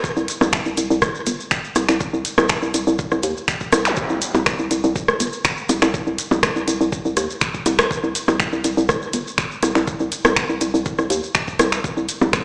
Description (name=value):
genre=minimal techno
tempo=122 BPM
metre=4/4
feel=straight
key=C minor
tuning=A4 = 440 Hz
part: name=electronic kick drum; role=drums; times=0.0-12.4 s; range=none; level=-26 LUFS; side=equal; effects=none
part: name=shekere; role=percussion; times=0.0-12.4 s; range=none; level=-30 LUFS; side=equal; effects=none
part: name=hollow knocking FM bass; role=bass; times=0.2-12.4 s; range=G1 to Eb2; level=-19 LUFS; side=equal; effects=sidechain pumping
part: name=garage drum kit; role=drums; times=0.3-12.4 s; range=finger snaps, hi-hat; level=-22 LUFS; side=equal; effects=none
part: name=electronic rim click and percussion blips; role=percussion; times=0.4-12.4 s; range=none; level=-20 LUFS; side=equal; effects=digital delay
part: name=zap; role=sound effects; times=3.9-4.0 s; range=none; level=-24 LUFS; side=equal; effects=none
room=moderate plate reverb, RT60 2.0 s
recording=played on a big sound system in a bare room, large studio reverb, small speaker sound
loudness=-17 LUFS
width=side -29 dB against mid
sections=0.0-12.4 A section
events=none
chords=none